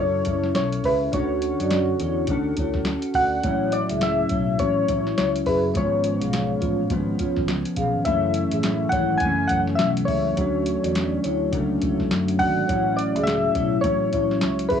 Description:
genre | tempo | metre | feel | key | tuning
indie pop, bedroom pop | 104 BPM | 4/4 | swing 60% on 16ths | A major | A4 = 443 Hz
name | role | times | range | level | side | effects
soft electric-piano-like synth keys | melody | 0.0-14.8 s | B4 to G#5 | -24 LUFS | left 1 dB | analog chorus, cassette tape, plate reverb, analog delay
mellow electric guitar | accompaniment | 0.0-14.8 s | F#2 to A4 | -24 LUFS | left 2 dB | analog chorus, warbly pitch drift, cassette tape
vintage muted picked electric bass | bass | 0.0-14.8 s | F#1 to F#2 | -29 LUFS | equal | transformer saturation
soft vintage rhythm box | drums | 0.2-14.8 s | hi-hat, kick drum, snare drum | -29 LUFS | equal | cassette tape
vibraphone with soft mallets | second line | 0.3-14.8 s | E4 to E#5 | -28 LUFS | right 1 dB | analog chorus, cassette tape, plate reverb, analog delay
room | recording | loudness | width
moderate small room reverb, RT60 0.5 s | home recording on cassette, small room ambience | -20 LUFS | side -8 dB against mid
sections
0.0-14.8 A section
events
none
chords
0.0 F#m7; 1.1 Dmaj7; 3.4 A6; 5.8 C#7/G#; 8.1 F#m7; 10.4 Dmaj7; 12.7 A6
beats
0.56 | 1.13 1.71 2.29 2.87 | 3.44 4.02 4.60 5.18 | 5.75 6.33 6.91 7.49 | 8.06 8.64 9.22 9.80 | 10.38 10.95 11.53 12.11 | 12.68 13.26 13.84 14.42

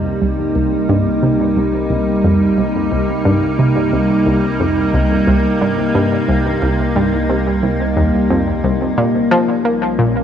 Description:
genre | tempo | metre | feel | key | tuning
ambient, sequencer-driven space music | 89 BPM | 4/4 | straight | unclear | A4 = 442 Hz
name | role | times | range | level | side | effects
evolving wavetable pad | sustained chords | 0.0-10.2 s | C3 to Eb4 | -15 LUFS | equal | chorus, built-in reverb
analog pluck | riff | 0.0-10.2 s | C2 to Bb3 | -17 LUFS | equal | chorus, tape echo
round analog bass | bass | 0.0-10.2 s | Bb1 to C2 | -28 LUFS | equal | none
room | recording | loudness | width
moderate plate reverb, RT60 2.8 s | none | -13 LUFS | side -9 dB against mid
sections
0.0-10.2 A section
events
fade-in on analog synth bass 0.0-10.2; filter sweep on synth arpeggio sound 0.0-10.2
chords
0.0 Cm7; 9.0 Bbm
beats
0.22 | 0.89 1.57 2.24 2.92 | 3.59 4.26 4.94 5.61 | 6.29 6.96 7.63 8.31 | 8.98 9.66

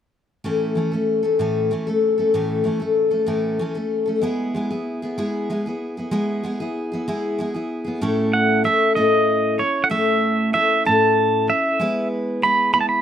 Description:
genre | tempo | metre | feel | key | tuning
folk | 64 BPM (dotted quarters) | 6/8 | straight | unclear | A4 = 440 Hz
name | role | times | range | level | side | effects
picked steel-string acoustic guitar | accompaniment | 0.4-13.0 s | A2 to B4 | -20 LUFS | left 2 dB | none
pedal steel guitar | melody | 8.3-13.0 s | C#5 to B5 | -18 LUFS | right 3 dB | none
room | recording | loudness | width
moderate studio reverb, RT60 0.6 s | dark, warm production | -18 LUFS | side -9 dB against mid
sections
0.5-8.0 A section; 8.0-13.0 B section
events
none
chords
0.5 A; 4.2 E/G#; 8.0 A; 11.8 E/G#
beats
| 0.46 1.41 | 2.35 3.30 | 4.24 5.19 | 6.13 7.08 | 8.02 8.96 | 9.91 10.85 | 11.79 12.73

